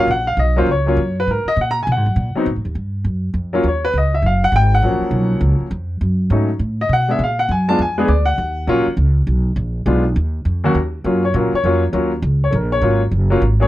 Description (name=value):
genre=jazz piano trio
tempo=202 BPM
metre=4/4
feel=swing 63% on 8ths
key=Eb minor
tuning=A4 = 442 Hz
part: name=warm baby grand piano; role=melody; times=0.0-13.7 s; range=Eb2 to Bb5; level=-17 LUFS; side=left 1 dB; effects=none
part: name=upright bass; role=bass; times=0.0-13.7 s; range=Gb1 to Cb3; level=-17 LUFS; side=equal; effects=none
room=little or no reverb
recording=dry, close 1970s-style studio recording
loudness=-15 LUFS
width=side -15 dB against mid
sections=0.0-10.8 A section; 10.8-13.7 A section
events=grand piano solo 0.0-10.8, 10.8-13.7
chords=0.0 Ebm7 (rootless); 1.3 Ab7(no3); 2.5 Ebmadd9 (rootless); 3.6 Ebm7; 6.0 B7; 7.2 Bb7b9; 8.4 Ebm7; 9.6 Bb5; 10.8 Ebm7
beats=| 0.09 0.39 0.68 0.98 | 1.27 1.57 1.87 2.16 | 2.46 2.75 3.05 3.35 | 3.64 3.94 4.24 4.53 | 4.83 5.12 5.42 5.72 | 6.01 6.31 6.60 6.90 | 7.20 7.49 7.79 8.09 | 8.38 8.68 8.97 9.27 | 9.57 9.86 10.16 10.46 | 10.75 11.05 11.35 11.64 | 11.94 12.23 12.53 12.83 | 13.12 13.42